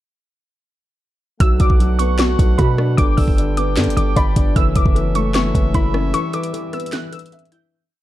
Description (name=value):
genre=hip hop, trap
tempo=152 BPM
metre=4/4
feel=half-time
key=B minor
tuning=A4 = 440 Hz
part: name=warbly dusty pluck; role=melody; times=1.4-7.7 s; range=B5 to G6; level=-25 LUFS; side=equal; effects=chorus, tape echo
part: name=dark baby grand piano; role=accompaniment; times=1.4-7.7 s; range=D3 to E5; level=-22 LUFS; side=left 2 dB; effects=none
part: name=bright brass ensemble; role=sustained chords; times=1.4-7.7 s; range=F#3 to G5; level=-30 LUFS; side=right 2 dB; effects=none
part: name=hard-hitting 808-style bass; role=bass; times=1.4-6.1 s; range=F#1 to B2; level=-18 LUFS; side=equal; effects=none
part: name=trap drum kit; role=drums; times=1.4-7.6 s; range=handclaps, hi-hat, kick drum, rim click, snare drum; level=-17 LUFS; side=equal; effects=none
room=little or no reverb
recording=dark, warm production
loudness=-14 LUFS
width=side -14 dB against mid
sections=1.4-7.7 hook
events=break 6.1-7.7; fade-out 6.1-7.7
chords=1.4 Bm7; 3.0 G; 4.6 F#m7; 6.1 Em